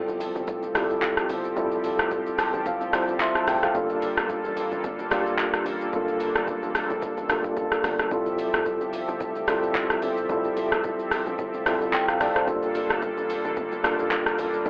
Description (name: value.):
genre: amapiano.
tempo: 110 BPM.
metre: 4/4.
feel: swing 55% on 16ths.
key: F major.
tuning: A4 = 440 Hz.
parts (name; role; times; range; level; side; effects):
mellow tine electric piano; accompaniment; 0.0-14.7 s; G3 to C6; -28 LUFS; equal; none.
warm analog pad; sustained chords; 0.0-14.7 s; F3 to E5; -34 LUFS; equal; chorus, tremolo, sidechain pumping.
hollow log drum bass; bass; 0.0-14.7 s; F1 to Bb1; -41 LUFS; equal; none.
deep house drum kit; drums; 0.1-14.7 s; handclaps, hi-hat, kick drum, rim click, shaker; -29 LUFS; equal; none.
congas; percussion; 0.2-14.7 s; none; -44 LUFS; equal; none.
room: light reverb, digital ambience.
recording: dry, gritty hardware recording, telephone sound.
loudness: -26 LUFS.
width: mono.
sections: 0.0-14.7 A section.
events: tine electric piano fill 2.1-3.8, 11.7-12.5.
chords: 0.0 Fmaj9; 3.8 Gm9; 8.1 Fmaj9; 12.5 Gm9.